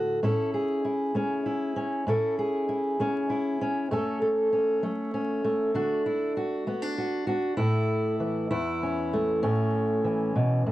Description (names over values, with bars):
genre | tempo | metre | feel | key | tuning
folk, solo fingerstyle acoustic guitar | 65 BPM (dotted quarters) | 6/8 | straight | A major | A4 = 441 Hz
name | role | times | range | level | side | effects
fingerpicked steel-string acoustic guitar | solo | 0.0-10.7 s | E2 to A4 | -25 LUFS | equal | none
room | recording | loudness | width
moderate booth ambience, RT60 0.2 s | worn, warbling old tape, cassette tape, vinyl crackle, warbly pitch drift | -25 LUFS | side -15 dB against mid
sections
0.2-7.6 A section; 7.6-10.7 B section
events
none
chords
0.2 A; 3.9 F#m; 5.7 D; 7.6 A